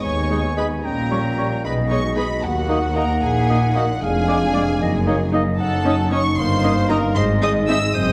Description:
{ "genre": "cinematic, playful, whimsical film cue", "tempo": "76 BPM (dotted quarters)", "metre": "6/8", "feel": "straight", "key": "unclear", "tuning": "A4 = 439 Hz", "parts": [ { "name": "rich studio violin section", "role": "melody", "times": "0.0-8.1 s", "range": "F#5 to E6", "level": "-30 LUFS", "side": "equal", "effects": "none" }, { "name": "rich studio violin section", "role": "second line", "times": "0.0-8.1 s", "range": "F#4 to E5", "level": "-32 LUFS", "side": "equal", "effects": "none" }, { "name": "warm clarinet", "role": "second line", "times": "0.0-8.1 s", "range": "B#4 to G#5", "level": "-28 LUFS", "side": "equal", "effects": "none" }, { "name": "dark French horn section", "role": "sustained chords", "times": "0.0-8.1 s", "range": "G3 to D#4", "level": "-27 LUFS", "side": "equal", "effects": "none" }, { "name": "rich studio cello section", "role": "bass", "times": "0.0-8.1 s", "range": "D#2 to B2", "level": "-27 LUFS", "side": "equal", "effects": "none" }, { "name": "rich studio double bass section", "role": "bass", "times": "0.0-8.1 s", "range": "F1 to D#2", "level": "-26 LUFS", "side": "equal", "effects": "none" }, { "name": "mellow cor anglais", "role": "second line", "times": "0.3-7.8 s", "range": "Db5 to D#5", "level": "-31 LUFS", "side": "equal", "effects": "none" }, { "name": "clear studio viola section", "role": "accompaniment", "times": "0.3-7.8 s", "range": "G3 to D#4", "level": "-30 LUFS", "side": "equal", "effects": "none" }, { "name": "mellow bassoon", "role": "accompaniment", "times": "0.3-7.8 s", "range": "G3 to C#4", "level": "-32 LUFS", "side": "equal", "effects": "none" } ], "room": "wet concert hall reverb, RT60 1.8 s", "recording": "none", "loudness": "-19 LUFS", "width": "mono", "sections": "0.0-8.1 A section", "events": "none", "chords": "0.0 G#m; 0.8 Gdim/Bb; 1.6 G#m/B; 2.4 D#m; 4.0 Ddim/F; 4.8 D#m/F#; 5.6 D#m7b5/F#; 6.4 D#7/G; 7.2 G#", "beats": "0.04 | 0.84 1.64 | 2.43 3.22 | 4.02 4.81 | 5.59 6.38 | 7.16 7.95" }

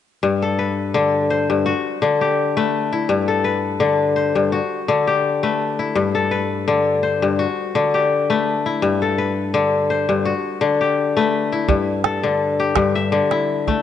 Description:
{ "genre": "west african traditional, West African string and xylophone music", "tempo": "84 BPM", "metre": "4/4", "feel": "swing 54% on 16ths", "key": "G major", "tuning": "A4 = 440 Hz", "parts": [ { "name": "kora", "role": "arpeggios", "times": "0.2-13.8 s", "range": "G2 to E5", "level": "-17 LUFS", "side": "left 4 dB", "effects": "none" }, { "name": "calabash", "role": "percussion", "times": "11.7-13.8 s", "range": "none", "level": "-22 LUFS", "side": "right 6 dB", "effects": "none" } ], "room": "moderate lush hall reverb, RT60 2.6 s", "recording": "home recording on cassette, nothing above 11.0 kHz", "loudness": "-17 LUFS", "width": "side -10 dB against mid", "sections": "0.2-11.7 A section; 11.7-13.8 B section", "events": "none", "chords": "0.2 G; 1.7 D; 3.1 G; 4.5 D; 6.0 G; 7.4 D; 8.8 G; 10.3 D; 11.7 G5; 13.1 D5", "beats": "| 0.22 0.94 1.66 2.37 | 3.09 3.81 4.52 5.24 | 5.96 6.67 7.39 8.10 | 8.82 9.54 10.26 10.97 | 11.69 12.41 13.12" }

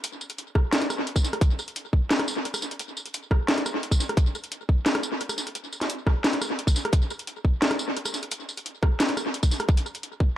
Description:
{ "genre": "drum and bass", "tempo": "174 BPM", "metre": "4/4", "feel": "half-time", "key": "none", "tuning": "none", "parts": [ { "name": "drum and bass drum kit", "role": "drums", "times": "0.0-10.1 s", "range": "hi-hat, rim click, snare drum, tambourine", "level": "-26 LUFS", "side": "equal", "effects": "tape echo" }, { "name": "electronic kick drum", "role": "drums", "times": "0.6-10.3 s", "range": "none", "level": "-21 LUFS", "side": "equal", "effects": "none" } ], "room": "moderate spring reverb, RT60 1.7 s", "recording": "echo-heavy mix", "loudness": "-23 LUFS", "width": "side -12 dB against mid", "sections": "0.0-10.4 A section", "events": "none", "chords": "none", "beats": "| 0.03 0.38 0.72 1.07 | 1.41 1.76 2.10 2.45 | 2.79 3.14 3.48 3.83 | 4.17 4.52 4.86 5.21 | 5.55 5.89 6.24 6.58 | 6.93 7.28 7.62 7.96 | 8.31 8.65 9.00 9.34 | 9.69 10.03" }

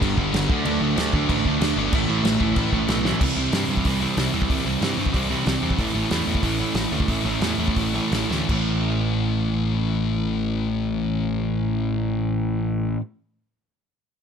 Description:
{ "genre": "punk rock", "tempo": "160-188 BPM", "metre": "4/4", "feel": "straight", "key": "unclear", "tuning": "A4 = 440 Hz", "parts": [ { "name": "overdriven semi-hollow guitar", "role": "riff", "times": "0.0-13.0 s", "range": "G2 to D4", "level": "-25 LUFS", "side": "right 9 dB", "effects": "none" }, { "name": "raw garage guitar", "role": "riff", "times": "0.0-3.2 s", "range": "G2 to D4", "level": "-27 LUFS", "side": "right 1 dB", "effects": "overdrive" }, { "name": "sludgy distorted guitar", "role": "riff", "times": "0.0-13.0 s", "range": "G2 to E4", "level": "-25 LUFS", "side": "left 10 dB", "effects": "overdrive" }, { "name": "fuzz picked electric bass", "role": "bass", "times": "0.0-13.0 s", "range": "G1 to G2", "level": "-28 LUFS", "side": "equal", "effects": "overdrive" }, { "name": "loose indie drum kit", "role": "drums", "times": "0.0-8.6 s", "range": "crash cymbal, hi-hat, kick drum, snare drum", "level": "-26 LUFS", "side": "equal", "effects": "none" } ], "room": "little or no reverb", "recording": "none", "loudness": "-20 LUFS", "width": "side -7 dB against mid", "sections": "0.0-3.2 A section; 3.2-8.5 B section; 8.5-11.5 C section", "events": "drum fill 3.1, 8.3; slowing down 5.8-8.5", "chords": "0.5 D; 1.9 A; 3.2 C; 5.8 A", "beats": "0.02 0.34 | 0.66 0.98 1.30 1.61 | 1.93 2.25 2.57 2.89 | 3.21 3.53 3.85 4.17 | 4.49 4.81 5.13 5.45 | 5.77 6.09 6.41 6.74 | 7.08 7.41 7.76 8.12 | 8.49 8.87 9.24 9.62 | 9.99 10.37 10.75 11.12" }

